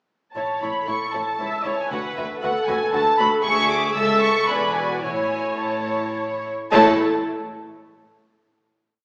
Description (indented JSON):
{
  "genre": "quick classical-period movement for string orchestra",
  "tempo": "105-117 BPM",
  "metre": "3/4",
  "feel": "straight",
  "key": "A major",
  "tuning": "A4 = 440 Hz",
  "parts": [
    { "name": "dark studio violin section", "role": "melody", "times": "0.3-7.0 s", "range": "E5 to E6", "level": "-25 LUFS", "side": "equal", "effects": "none" },
    { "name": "warm studio violin section", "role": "second line", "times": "0.4-7.0 s", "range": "E4 to E5", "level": "-28 LUFS", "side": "equal", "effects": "none" },
    { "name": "warm chamber viola section", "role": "accompaniment", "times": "0.4-7.0 s", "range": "A3 to E5", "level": "-27 LUFS", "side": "equal", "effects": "none" },
    { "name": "warm chamber double bass section", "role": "bass", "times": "0.4-7.0 s", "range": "E1 to D2", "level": "-37 LUFS", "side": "equal", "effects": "none" },
    { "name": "warm studio cello section", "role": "bass", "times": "0.4-7.0 s", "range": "C#2 to A2", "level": "-34 LUFS", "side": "equal", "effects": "none" }
  ],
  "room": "wet scoring stage reverb, RT60 1.7 s",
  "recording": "heard from further back in the room, small speaker sound",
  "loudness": "-21 LUFS",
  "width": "mono",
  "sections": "0.4-6.7 A section; 6.7-8.4 final chord",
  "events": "none",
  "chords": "0.4 A; 1.4 A/C#; 1.9 Bm/D; 3.5 E7/D; 4.0 A/C#; 4.5 E7; 5.0 A; 6.7 A5"
}